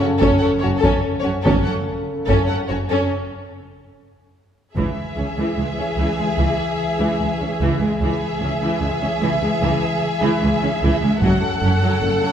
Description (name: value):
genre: cinematic, epic orchestral film score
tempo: 74 BPM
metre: 4/4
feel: straight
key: C# minor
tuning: A4 = 444 Hz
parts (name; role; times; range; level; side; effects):
- warm symphonic violin section; melody; 0.0-12.3 s; A4 to F#5; -26 LUFS; left 1 dB; none
- warm symphonic violin section; second line; 0.0-12.3 s; C#4 to A4; -26 LUFS; left 1 dB; none
- rich symphonic viola section; accompaniment; 0.0-12.3 s; E3 to C#4; -26 LUFS; equal; none
- mellow French horn section; sustained chords; 0.0-12.3 s; C#3 to A4; -25 LUFS; left 2 dB; none
- dark symphonic cello section; bass; 0.0-12.3 s; C#2 to F#2; -25 LUFS; right 2 dB; none
- rich symphonic double bass section; bass; 0.2-12.1 s; F#1 to C#2; -24 LUFS; right 2 dB; none
- taiko ensemble; drums; 0.2-12.3 s; none; -23 LUFS; equal; none
room: wet scoring stage reverb, RT60 2.0 s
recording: recorded in a church or concert hall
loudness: -17 LUFS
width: side -9 dB against mid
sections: 0.0-4.8 A section; 4.8-12.3 B section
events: break 3.1-4.8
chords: 0.0 F#m; 4.8 C#m; 11.2 F#m